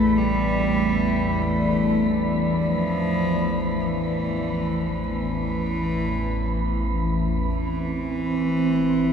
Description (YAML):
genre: dark ambient drone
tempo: 49 BPM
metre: 4/4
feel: straight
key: A minor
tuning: A4 = 440 Hz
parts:
  - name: rich cello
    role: melody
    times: 0.0-9.1 s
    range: E3 to A3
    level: -24 LUFS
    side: left 1 dB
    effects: tape echo
  - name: dark analog pad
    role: sustained chords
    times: 0.0-9.1 s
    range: A3 to D5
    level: -30 LUFS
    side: equal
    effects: chorus
  - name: carillon bells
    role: arpeggios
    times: 0.0-3.2 s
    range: none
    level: barely audible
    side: none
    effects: none
  - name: organ-like drone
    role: drone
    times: 0.0-9.1 s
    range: A1 to E2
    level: -26 LUFS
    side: left 1 dB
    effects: ensemble chorus, built-in reverb
  - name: wind-like tuned noise texture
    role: texture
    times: 0.0-9.1 s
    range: C4 to B5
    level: -29 LUFS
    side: right 4 dB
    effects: built-in reverb
room: wet cathedral reverb, RT60 6.2 s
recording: in a vast, echoing space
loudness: -21 LUFS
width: side -7 dB against mid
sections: 0.0-7.5 A section; 7.5-9.1 B section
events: fade-out on analog synth pad 0.0-7.5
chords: 0.0 Amadd9